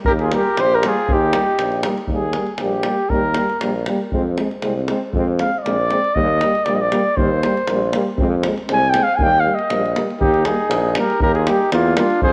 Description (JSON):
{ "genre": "balkan folk, Balkan brass band", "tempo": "118 BPM", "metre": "2/4", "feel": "swing 55% on 16ths", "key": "Eb major", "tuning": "A4 = 441 Hz", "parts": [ { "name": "davul", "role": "percussion", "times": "0.0-12.3 s", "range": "none", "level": "-27 LUFS", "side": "equal", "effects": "none" }, { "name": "mellow flugelhorn", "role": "melody", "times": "0.1-12.3 s", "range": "F4 to Ab5", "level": "-21 LUFS", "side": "equal", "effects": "none" }, { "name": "dark trumpet", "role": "second line", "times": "0.1-1.9, 10.2-12.3 s", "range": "Bb3 to Ab4", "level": "-27 LUFS", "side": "equal", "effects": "none" }, { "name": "clear tuba", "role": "bass", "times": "0.1-12.3 s", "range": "Bb1 to F2", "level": "-24 LUFS", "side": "equal", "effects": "tube saturation" }, { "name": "mellow trombone", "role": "accompaniment", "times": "0.3-12.1 s", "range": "Bb3 to C4", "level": "-30 LUFS", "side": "equal", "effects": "none" }, { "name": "warm euphonium", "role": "accompaniment", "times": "0.3-12.1 s", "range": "G3 to Ab3", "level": "-29 LUFS", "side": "equal", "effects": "none" } ], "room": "wet echo chamber reverb, RT60 1.9 s, studio ambience", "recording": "none", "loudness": "-18 LUFS", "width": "mono", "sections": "0.0-2.1 A section; 2.1-10.2 B section; 10.2-12.3 C section", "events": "flugelhorn solo 2.1-10.2", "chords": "0.0 Eb; 4.1 Fm; 6.2 Eb; 8.2 Fm; 9.2 Eb" }